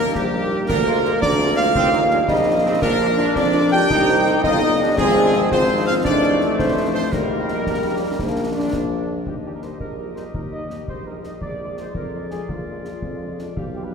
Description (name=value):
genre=military-style march for wind band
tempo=112 BPM (dotted quarters)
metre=6/8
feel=straight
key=Eb major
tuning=A4 = 437 Hz
part: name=mellow trumpet section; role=melody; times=0.0-13.9 s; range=F4 to G5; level=-23 LUFS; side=right 1 dB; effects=none
part: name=mellow euphonium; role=second line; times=0.0-8.7 s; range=G3 to G4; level=-24 LUFS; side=right 2 dB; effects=none
part: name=warm woodwind section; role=second line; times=0.0-13.9 s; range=G4 to G5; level=-26 LUFS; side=left 1 dB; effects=none
part: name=mellow French horn section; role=accompaniment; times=0.0-13.8 s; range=F3 to F4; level=-28 LUFS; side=left 2 dB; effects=none
part: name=bright trombone section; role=sustained chords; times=0.0-9.2 s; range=G3 to F4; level=-25 LUFS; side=left 1 dB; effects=none
part: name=clear tuba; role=bass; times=0.0-13.9 s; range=G1 to F2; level=-25 LUFS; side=equal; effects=none
part: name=concert snare drum, concert bass drum and clash cymbals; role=drums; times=0.2-13.7 s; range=none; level=-29 LUFS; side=left 1 dB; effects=none
room=wet church reverb, RT60 3.3 s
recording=recorded in a church or concert hall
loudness=-16 LUFS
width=side -6 dB against mid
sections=0.0-9.3 A section; 9.3-13.9 B section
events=none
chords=0.0 Eb; 0.7 Bb7/D; 1.8 Eb; 2.8 Bb7; 3.9 Cm; 5.0 Fm/Ab; 6.0 F7/A; 7.1 Eb/Bb; 8.2 Bb; 9.3 Eb; 11.4 Bb7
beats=0.15 | 0.69 1.22 | 1.76 2.30 | 2.83 3.37 | 3.90 4.44 | 4.98 5.51 | 6.05 6.59 | 7.12 7.66 | 8.20 8.73 | 9.27 9.81 | 10.35 10.88 | 11.42 11.96 | 12.50 13.03 | 13.57